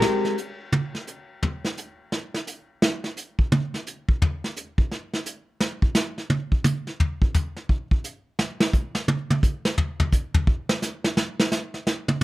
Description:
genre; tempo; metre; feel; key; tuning
jazz; 172 BPM; 4/4; swing 63% on 8ths; none; none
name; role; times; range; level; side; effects
vintage brush drum kit; drums; 0.0-12.2 s; hi-hat, kick drum, snare drum, toms; -22 LUFS; equal; none
room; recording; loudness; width
light reverb; close, detailed microphones; -23 LUFS; side -17 dB against mid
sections
0.0-11.2 A section; 11.2-12.2 A section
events
drum solo 0.0-12.2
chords
none

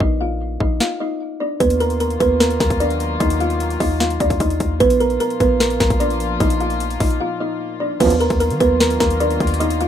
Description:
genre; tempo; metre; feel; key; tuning
hip hop, trap; 150 BPM; 4/4; half-time; Eb harmonic minor; A4 = 441 Hz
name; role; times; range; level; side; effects
kalimba; melody; 0.0-9.9 s; Cb4 to Bb5; -18 LUFS; right 1 dB; low-pass filter
warm 808-style bass; bass; 0.0-9.9 s; Bb1 to Eb3; -22 LUFS; equal; none
trap drum kit; drums; 0.0-9.9 s; crash cymbal, hi-hat, kick drum, snare drum; -21 LUFS; equal; overdrive
dark chamber string section; sustained chords; 1.6-9.9 s; Bb2 to F4; -26 LUFS; left 3 dB; none
warm brass ensemble; stabs; 8.0-8.1 s; Bb1 to F3; -20 LUFS; right 7 dB; none
room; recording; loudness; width
light reverb, studio reverb; rough home demo mix; -16 LUFS; side -9 dB against mid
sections
0.0-8.0 A section; 8.0-9.9 B section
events
break 0.0-1.6, 7.2-8.0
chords
0.0 Bb5; 1.6 Ebmadd9; 4.8 Bb; 8.0 Ebmadd9

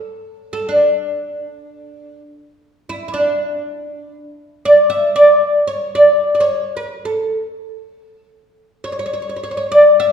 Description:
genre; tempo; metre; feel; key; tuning
Persian modal ensemble; free time; none; none; D avaz esfahan; A4 = 440 Hz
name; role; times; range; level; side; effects
oud; solo; 0.0-10.1 s; D4 to E5; -13 LUFS; equal; none
room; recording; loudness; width
wet recital hall reverb, RT60 1.5 s; recorded in a church or concert hall; -12 LUFS; side -8 dB against mid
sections
0.0-4.3 A section; 4.3-10.1 A section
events
none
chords
none

